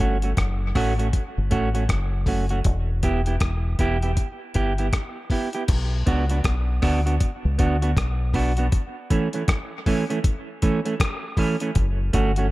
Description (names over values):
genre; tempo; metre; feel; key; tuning
dub reggae; 79 BPM; 4/4; swing 62% on 16ths; B minor; A4 = 440 Hz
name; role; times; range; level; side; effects
clean electric guitar; accompaniment; 0.0-12.5 s; E3 to G4; -26 LUFS; right 3 dB; dub echo
deep dub fingered electric bass; bass; 0.0-12.5 s; E1 to D2; -23 LUFS; equal; none
dusty soul sampler-style drum kit; drums; 0.0-12.5 s; crash cymbal, hi-hat, kick drum, rim click; -23 LUFS; left 1 dB; none
room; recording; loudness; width
light reverb; echo-heavy mix; -20 LUFS; side -18 dB against mid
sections
0.0-5.7 A section; 5.7-12.5 B section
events
none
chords
0.0 F#m; 2.6 Em; 5.7 Bm; 8.7 A; 11.8 F#m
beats
0.37 1.13 1.89 | 2.65 3.41 4.17 4.93 | 5.69 6.45 7.21 7.96 | 8.72 9.48 10.24 11.00 | 11.76